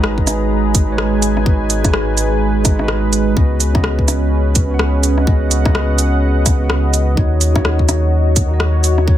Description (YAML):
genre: future garage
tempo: 126 BPM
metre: 4/4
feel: swing 61% on 16ths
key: G# minor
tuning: A4 = 441 Hz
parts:
  - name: tine electric piano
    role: accompaniment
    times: 0.0-9.2 s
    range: C#3 to F#5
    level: -22 LUFS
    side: right 3 dB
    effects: vintage 12-bit sampler grit, sidechain pumping, tape echo
  - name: dark analog pad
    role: sustained chords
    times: 0.0-9.2 s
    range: G#3 to A#5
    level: -21 LUFS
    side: right 1 dB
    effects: chorus, sidechain pumping
  - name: soft dub sub bass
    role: bass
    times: 0.0-9.2 s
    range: G#1 to D#2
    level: -16 LUFS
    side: equal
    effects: sidechain pumping
  - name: organic electronic drum kit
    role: drums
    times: 0.0-9.1 s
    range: cabasa, hi-hat, rim click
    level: -19 LUFS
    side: equal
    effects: none
  - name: electronic kick drum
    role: drums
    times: 0.2-9.2 s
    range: none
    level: -14 LUFS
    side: equal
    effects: none
room: little or no reverb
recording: none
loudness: -12 LUFS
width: side -12 dB against mid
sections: 0.0-9.2 A section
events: none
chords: 0.0 G#m7; 3.4 C#9sus4; 7.2 D#m7